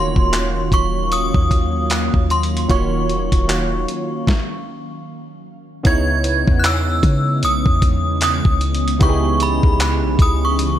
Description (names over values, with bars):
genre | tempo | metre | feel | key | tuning
contemporary R&B | 76 BPM | 4/4 | swing 58% on 16ths | C# dorian | A4 = 440 Hz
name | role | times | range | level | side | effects
synth chime | melody | 0.0-10.8 s | B5 to G#6 | -22 LUFS | equal | ensemble chorus, digital delay
warm analog keys | accompaniment | 0.0-10.8 s | C#3 to C#5 | -23 LUFS | right 2 dB | chorus
ethereal airy pad | sustained chords | 0.0-10.8 s | C#3 to E#5 | -26 LUFS | equal | ensemble chorus, built-in reverb, sidechain pumping
clean 808-style bass | bass | 0.0-10.8 s | D#1 to C#3 | -20 LUFS | equal | none
dusty soul sampler-style drum kit | drums | 0.2-10.8 s | handclaps, hi-hat, kick drum, snare drum | -18 LUFS | equal | none
glassy wavetable pluck | texture | 6.2-7.7 s | B4 to G#5 | -34 LUFS | equal | chorus, digital delay
room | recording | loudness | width
little or no reverb | none | -15 LUFS | side -11 dB against mid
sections
0.0-5.9 A section; 5.9-10.8 B section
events
stop 4.3-5.9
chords
0.0 D#m9; 5.9 C#m9